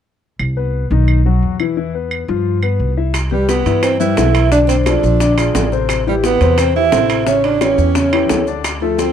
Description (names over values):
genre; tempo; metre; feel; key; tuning
Afro-Cuban jazz; 174 BPM; 4/4; straight; C major; A4 = 440 Hz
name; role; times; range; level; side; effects
upright bass; bass; 0.4-9.1 s; A1 to G2; -17 LUFS; equal; none
claves; percussion; 0.4-8.8 s; none; -26 LUFS; right 5 dB; none
warm baby grand piano; accompaniment; 0.6-9.1 s; C3 to E5; -19 LUFS; left 11 dB; none
bongos; percussion; 3.1-9.1 s; none; -26 LUFS; left 8 dB; none
maracas; percussion; 3.1-9.1 s; none; -31 LUFS; left 18 dB; none
timbales; percussion; 3.1-9.1 s; none; -24 LUFS; right 6 dB; none
vibraphone with medium mallets; melody; 3.3-9.1 s; G4 to E5; -18 LUFS; right 2 dB; none
warm tenor saxophone; second line; 3.3-9.1 s; G3 to E4; -19 LUFS; right 10 dB; none
room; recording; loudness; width
small room ambience; dry, close 1970s-style studio recording; -13 LUFS; side -9 dB against mid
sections
0.4-3.1 A section; 3.1-9.1 B section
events
none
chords
0.4 Cmmaj7; 1.1 B; 1.8 Em; 2.5 G7; 3.1 Cmaj7; 4.5 Bm7b5; 5.2 Bb7; 5.9 Am9; 7.3 A7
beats
| 0.40 0.74 1.08 1.43 | 1.77 2.11 2.46 2.80 | 3.14 3.49 3.83 4.17 | 4.52 4.86 5.21 5.55 | 5.89 6.24 6.58 6.93 | 7.27 7.61 7.96 8.30 | 8.65 8.99